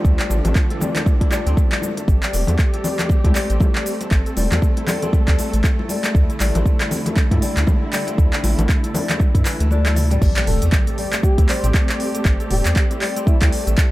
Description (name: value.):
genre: afro house.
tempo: 118 BPM.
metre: 4/4.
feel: swing 58% on 16ths.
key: A minor.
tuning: A4 = 440 Hz.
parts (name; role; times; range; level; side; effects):
dark symphonic string section; sustained chords; 0.0-13.9 s; D3 to A4; -27 LUFS; right 2 dB; vintage 12-bit sampler grit, sidechain pumping.
kora; arpeggios; 0.0-13.9 s; E3 to A4; -27 LUFS; left 4 dB; sidechain pumping, dub echo.
round analog bass; bass; 0.0-13.7 s; E1 to G2; -19 LUFS; equal; sidechain pumping.
electronic kick drum; drums; 0.0-13.9 s; none; -16 LUFS; equal; none.
deep house drum kit; drums; 0.1-13.9 s; crash cymbal, handclaps, hi-hat, shaker, toms; -25 LUFS; equal; none.
congas; percussion; 0.3-10.2 s; none; -26 LUFS; left 2 dB; none.
impact; sound effects; 10.2-12.3 s; none; -28 LUFS; equal; none.
expressive synth lead; melody; 10.5-13.5 s; E4 to C5; -30 LUFS; equal; lush chorus, dub echo.
room: little or no reverb.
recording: none.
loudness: -16 LUFS.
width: side -17 dB against mid.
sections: 0.0-10.2 A section; 10.2-13.9 B section.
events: kick drops out 9.7-10.2; drum fill 9.8-10.2; drop 10.2-13.9; impact 10.2-12.3.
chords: 0.0 Dm7; 2.1 Am7; 6.1 D5; 10.2 Am7.